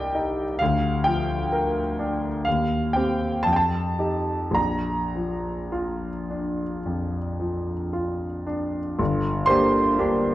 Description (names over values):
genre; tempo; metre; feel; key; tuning
classical, romantic nocturne for solo piano; 50-67 BPM; 4/4; rubato; Bb major; A4 = 440 Hz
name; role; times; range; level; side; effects
clear concert grand piano; solo; 0.0-10.3 s; G1 to C6; -22 LUFS; equal; none
room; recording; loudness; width
moderate recital hall reverb, RT60 1.8 s; worn, warbling old tape, cassette tape, warbly pitch drift; -22 LUFS; side -14 dB against mid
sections
0.0-9.0 A section; 9.0-10.3 B section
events
none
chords
0.0 Cm; 0.6 Bb/D; 2.5 Cm/Eb; 3.5 F9; 4.6 Bb; 9.0 Gm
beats
| 0.60 1.51 2.46 3.46 | 4.57 5.74 6.86 7.92 | 8.99 9.99